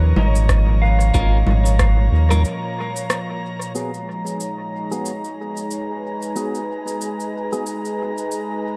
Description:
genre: ambient dub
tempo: 92 BPM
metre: 4/4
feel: swing 58% on 16ths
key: G# dorian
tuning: A4 = 443 Hz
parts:
  - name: electric slide guitar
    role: melody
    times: 0.0-2.1 s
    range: B4 to E#5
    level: -32 LUFS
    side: equal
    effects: dub echo
  - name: airy breathy pad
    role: sustained chords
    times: 0.0-8.8 s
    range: A#2 to A#5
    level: -28 LUFS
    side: equal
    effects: chorus, vintage 12-bit sampler grit
  - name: round analog bass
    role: bass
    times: 0.0-2.4 s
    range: G#1 to D#2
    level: -17 LUFS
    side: equal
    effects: none
  - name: electronic congas, cabasa and rim click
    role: drums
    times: 0.2-8.5 s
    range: none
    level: -29 LUFS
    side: equal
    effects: dub echo
  - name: electronic kick drum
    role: drums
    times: 0.5-1.9 s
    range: none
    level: -22 LUFS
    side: equal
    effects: none
  - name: clean electric guitar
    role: stabs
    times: 1.1-7.6 s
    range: B3 to A#4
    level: -33 LUFS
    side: equal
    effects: low-pass filter, dub echo
  - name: wind-like tuned noise texture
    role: texture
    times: 4.9-8.8 s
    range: G#4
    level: -35 LUFS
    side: equal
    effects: built-in reverb
room: light reverb, digital ambience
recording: echo-heavy mix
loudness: -21 LUFS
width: mono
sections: 0.0-3.8 A section; 3.8-8.8 B section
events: break 2.4-3.8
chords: 0.0 A#m/G#; 3.8 G#m7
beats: 0.49 | 1.14 1.79 2.45 3.10 | 3.75 4.40 5.06 5.71 | 6.36 7.01 7.67 8.32

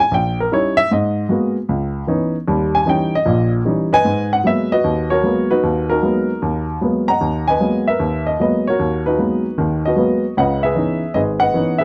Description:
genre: solo jazz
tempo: 152 BPM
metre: 4/4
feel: swing 65% on 8ths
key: G# minor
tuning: A4 = 440 Hz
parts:
  - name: warm upright piano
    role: solo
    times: 0.0-11.8 s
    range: G#1 to A#5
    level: -18 LUFS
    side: equal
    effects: none
room: light reverb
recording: dry, close 1970s-style studio recording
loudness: -18 LUFS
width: mono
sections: 0.0-4.0 A section; 4.0-11.8 B section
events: upright piano solo 0.0-4.0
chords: 0.0 D#7b9; 0.9 G#m9; 1.7 C#m9; 2.5 D#7b9; 4.0 G#m9; 10.4 C#m9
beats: 0.10 0.50 | 0.89 1.28 1.68 2.07 | 2.46 2.86 3.25 3.65 | 4.04 4.44 4.83 5.23 | 5.62 6.02 6.41 6.81 | 7.20 7.60 7.99 8.38 | 8.78 9.17 9.57 9.96 | 10.35 10.75 11.14 11.53

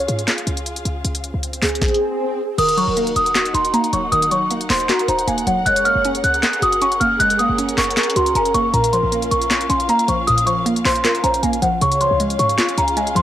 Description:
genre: hip hop, trap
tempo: 156 BPM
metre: 4/4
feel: half-time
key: Eb dorian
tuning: A4 = 440 Hz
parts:
  - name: warm velvety synth lead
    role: second line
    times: 0.0-12.5 s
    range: Ab4 to Db5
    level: -23 LUFS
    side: right 1 dB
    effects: chorus, cassette tape, analog delay
  - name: dark studio string section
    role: sustained chords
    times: 0.0-13.2 s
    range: Db4 to Gb5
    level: -29 LUFS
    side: equal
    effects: cassette tape
  - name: short 808-style bass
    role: bass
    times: 0.0-13.2 s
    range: Eb1 to Ab2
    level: -26 LUFS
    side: equal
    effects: none
  - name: trap drum kit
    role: drums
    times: 0.1-13.2 s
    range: crash cymbal, handclaps, hi-hat, kick drum, snare drum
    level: -22 LUFS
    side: equal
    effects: none
  - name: swell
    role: sound effects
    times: 1.4-2.6 s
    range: none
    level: -27 LUFS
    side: left 2 dB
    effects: none
  - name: celesta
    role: melody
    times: 2.6-13.2 s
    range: Gb5 to Gb6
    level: -18 LUFS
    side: equal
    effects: cassette tape
  - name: glassy wavetable pluck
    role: accompaniment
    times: 2.6-13.2 s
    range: Bb2 to Ab4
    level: -22 LUFS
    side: equal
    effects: chorus, cassette tape
room: light reverb, digital ambience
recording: home recording on cassette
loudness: -15 LUFS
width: side -12 dB against mid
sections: 0.0-2.6 A section; 2.6-13.2 B section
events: break 0.0-2.6; swell 1.4-2.6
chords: 0.0 Db; 2.6 Ebm; 5.7 Gbadd9; 8.7 Bbm; 11.8 Db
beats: 0.28 0.66 | 1.05 1.43 1.81 2.20 | 2.58 2.97 3.35 3.74 | 4.12 4.51 4.89 5.28 | 5.66 6.05 6.43 6.82 | 7.20 7.58 7.97 8.35 | 8.74 9.12 9.51 9.89 | 10.28 10.66 11.05 11.43 | 11.81 12.20 12.58 12.97

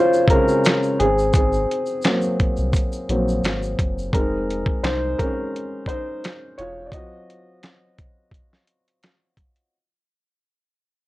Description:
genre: lo-fi hip hop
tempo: 86 BPM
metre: 4/4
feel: swing 56% on 16ths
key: Eb dorian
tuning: A4 = 437 Hz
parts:
  - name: dark upright piano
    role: accompaniment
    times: 0.0-9.7 s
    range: Db3 to Eb5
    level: -21 LUFS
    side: equal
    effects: cassette tape, low-pass filter
  - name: tube shaker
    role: percussion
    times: 0.1-4.1 s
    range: none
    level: -42 LUFS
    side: left 2 dB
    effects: none
  - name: dusty soul sampler-style drum kit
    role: drums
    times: 0.3-9.7 s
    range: finger snaps, hi-hat, kick drum, snare drum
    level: -21 LUFS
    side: equal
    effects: none
  - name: soft dub sub bass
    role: bass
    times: 1.0-6.9 s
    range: Fb1 to C2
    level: -26 LUFS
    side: equal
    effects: tube saturation
room: moderate studio reverb, RT60 0.6 s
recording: worn, warbling old tape, cassette tape, warbly pitch drift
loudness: -18 LUFS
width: side -17 dB against mid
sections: 0.0-9.7 A section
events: fade-out 0.0-9.7; upright piano solo 0.0-9.7; break 6.9-9.7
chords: 0.0 Bbm7; 1.0 Ab9; 4.1 Fm7; 6.9 Ebm69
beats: 0.64 | 1.34 2.04 2.74 3.44 | 4.13 4.83 5.53 6.22 | 6.92 7.62 8.32 9.02

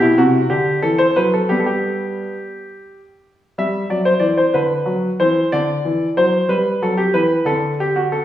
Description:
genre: classical, baroque-style suite movement for grand piano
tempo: 61 BPM (dotted quarters)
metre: 6/8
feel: uneven beats, rubato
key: G major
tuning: A4 = 439 Hz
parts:
  - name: clear grand piano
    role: solo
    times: 0.0-8.2 s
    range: B2 to E5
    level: -15 LUFS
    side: equal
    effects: none
room: wet stone room reverb, RT60 1.2 s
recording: heard from further back in the room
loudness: -15 LUFS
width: side -12 dB against mid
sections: 0.0-3.6 A section; 3.6-8.2 B section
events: none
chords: 0.0 Cmaj7#11/B; 0.5 D; 1.5 G; 5.5 D; 6.5 Emadd9; 7.5 D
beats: 0.52 | 1.52 2.55 | 3.57 4.54 | 5.51 6.49 | 7.46

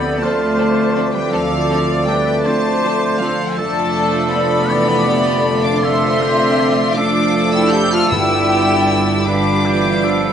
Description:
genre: classical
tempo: 53 BPM (dotted quarters)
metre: 12/8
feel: rubato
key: unclear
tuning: A4 = 440 Hz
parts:
  - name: warm symphonic violin section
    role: melody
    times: 0.0-10.3 s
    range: F5 to G6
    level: -23 LUFS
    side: left 3 dB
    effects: none
  - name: flute section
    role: second line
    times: 0.0-10.3 s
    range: A4 to B5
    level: -23 LUFS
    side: left 2 dB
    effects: none
  - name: warm oboe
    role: second line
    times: 0.0-10.3 s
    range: F4 to D5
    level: -23 LUFS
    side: right 1 dB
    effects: none
  - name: clear trombone section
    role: sustained chords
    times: 0.0-10.3 s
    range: D3 to A3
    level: -24 LUFS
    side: right 3 dB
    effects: none
  - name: dark French horn section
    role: sustained chords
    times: 0.0-10.3 s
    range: C4 to A4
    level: -23 LUFS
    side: left 3 dB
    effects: none
  - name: mellow trumpet section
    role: stabs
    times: 0.0-10.3 s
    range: D5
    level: -24 LUFS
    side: right 3 dB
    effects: none
  - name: rich chamber double bass section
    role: bass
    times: 0.0-10.3 s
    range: F1 to D2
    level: -25 LUFS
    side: right 2 dB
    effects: none
  - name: rich symphonic cello section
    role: bass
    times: 0.0-10.3 s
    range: F3 to G4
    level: -22 LUFS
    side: right 1 dB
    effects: none
  - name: clear studio violin section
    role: second line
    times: 0.2-10.3 s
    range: B3 to B4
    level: -26 LUFS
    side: left 3 dB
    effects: none
  - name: dark chamber viola section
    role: accompaniment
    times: 0.2-10.3 s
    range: D3 to C4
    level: -23 LUFS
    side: right 2 dB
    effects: none
  - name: timpani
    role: percussion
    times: 8.1-9.2 s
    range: G2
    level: -29 LUFS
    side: right 1 dB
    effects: none
room: moderate scoring stage reverb, RT60 2.2 s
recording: nothing above 10.8 kHz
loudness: -13 LUFS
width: side -8 dB against mid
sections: 0.0-10.3 A section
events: none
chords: 0.0 Dm7; 3.6 Dm/F; 8.1 G7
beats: 0.22 1.33 2.45 | 3.57 4.70 5.83 6.96 | 8.11 9.26

